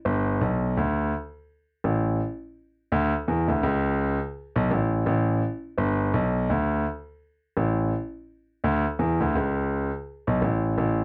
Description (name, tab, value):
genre	reggae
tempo	84 BPM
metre	4/4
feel	swing 58% on 16ths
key	unclear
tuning	A4 = 440 Hz
part	warm grand piano	solo	0.1-11.0 s	G1 to E2	-25 LUFS	equal	none
room	light reverb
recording	dry, close 1970s-style studio recording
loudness	-26 LUFS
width	mono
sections	0.0-11.0 A section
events	none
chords	none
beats	| 0.05 0.76 1.48 2.19 | 2.91 3.62 4.34 5.06 | 5.77 6.49 7.20 7.92 | 8.63 9.35 10.06 10.77